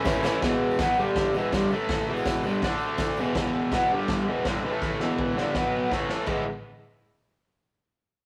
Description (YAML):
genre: garage rock duo or trio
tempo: 164 BPM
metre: 4/4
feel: straight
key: unclear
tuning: A4 = 440 Hz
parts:
  - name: cranked stack guitar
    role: riff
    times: 0.0-6.4 s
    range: E2 to E4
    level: -27 LUFS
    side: equal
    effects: overdrive
  - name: tambourine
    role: percussion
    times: 0.0-3.2 s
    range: none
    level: -56 LUFS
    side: equal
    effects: none
  - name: raw garage drum kit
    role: drums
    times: 0.1-6.4 s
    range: crash cymbal, hi-hat, kick drum, snare drum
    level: -33 LUFS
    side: equal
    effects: none
room: moderate stone room reverb, RT60 1.1 s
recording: rough rehearsal-room recording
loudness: -26 LUFS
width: mono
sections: 0.4-6.3 A section; 6.3-7.7 B section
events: drum fill 0.0-0.4, 4.8-6.3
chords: 0.4 E5; 1.0 G5; 1.3 E5; 1.7 A5; 2.1 E5; 2.6 D5; 3.2 E5; 3.9 G5; 4.3 E5; 4.6 A5; 5.0 E5; 5.5 B5; 5.9 A5; 6.3 E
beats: 0.06 | 0.42 0.79 1.15 1.52 | 1.89 2.25 2.62 2.98 | 3.35 3.71 4.08 4.45 | 4.81 5.18 5.54 5.91 | 6.28